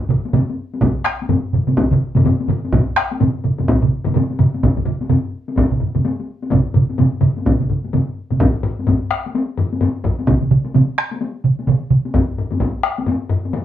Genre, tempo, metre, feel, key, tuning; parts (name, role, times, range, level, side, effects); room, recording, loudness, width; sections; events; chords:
japanese traditional, taiko drum ensemble; 127 BPM; 4/4; swing 60% on 16ths
taiko ensemble; percussion; 0.1-13.6 s; -21 LUFS; left 3 dB
taiko ensemble; percussion; 0.1-12.0 s; -17 LUFS; right 3 dB
taiko ensemble; percussion; 0.3-13.6 s; -22 LUFS; left 4 dB
taiko ensemble; percussion; 0.8-12.7 s; -20 LUFS; right 1 dB
wet studio reverb, RT60 0.5 s; band playing live in one room; -15 LUFS; side -11 dB against mid
0.0-8.4 A section; 8.4-13.6 B section
speeding up 0.0-13.6